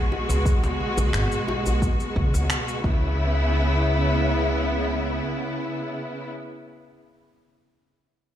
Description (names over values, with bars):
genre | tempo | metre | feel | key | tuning
organic downtempo | 88 BPM | 4/4 | straight | C# minor pentatonic | A4 = 440 Hz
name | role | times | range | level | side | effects
bright studio string section | sustained chords | 0.0-6.3 s | B2 to F#4 | -25 LUFS | equal | sidechain pumping
djembe | percussion | 0.1-3.0 s | none | -29 LUFS | equal | none
upright bass | bass | 0.3-5.2 s | G#1 to C#2 | -24 LUFS | equal | tube saturation, sidechain pumping
electronic shaker and finger snaps | drums | 0.3-2.8 s | none | -31 LUFS | equal | none
electronic kick drum | drums | 0.5-3.0 s | none | -23 LUFS | equal | none
room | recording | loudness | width
light reverb, studio reverb | played on a big sound system in a bare room, stone room reverb | -21 LUFS | side -11 dB against mid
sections
0.0-3.2 A section; 3.2-5.9 B section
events
none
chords
0.0 G#m7; 2.8 C#m7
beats
| 0.45 1.13 1.81 2.50 | 3.18 3.86 4.54 5.22